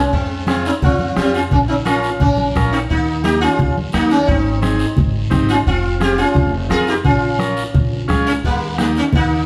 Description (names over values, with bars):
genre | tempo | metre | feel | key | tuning
latin, cumbia | 173 BPM | 4/4 | straight | Bb dorian | A4 = 443 Hz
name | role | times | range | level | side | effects
sitar | melody | 0.0-9.5 s | G3 to Ab4 | -20 LUFS | equal | none
overdriven combo organ | accompaniment | 0.0-9.0 s | Bb3 to Bb4 | -24 LUFS | equal | none
upright bass | bass | 0.0-9.4 s | F1 to F2 | -24 LUFS | equal | none
bombo | percussion | 0.1-9.3 s | none | -24 LUFS | equal | none
guiro | percussion | 0.1-9.5 s | none | -36 LUFS | equal | none
congas | percussion | 0.5-9.3 s | none | -24 LUFS | equal | none
room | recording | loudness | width
wet large studio reverb, RT60 1.2 s | heard from further back in the room | -16 LUFS | mono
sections
0.1-9.5 A section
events
none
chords
0.1 Fm; 1.5 Bbm; 2.9 Eb; 4.3 Ab; 5.7 Fm; 7.0 Bbm; 8.4 Eb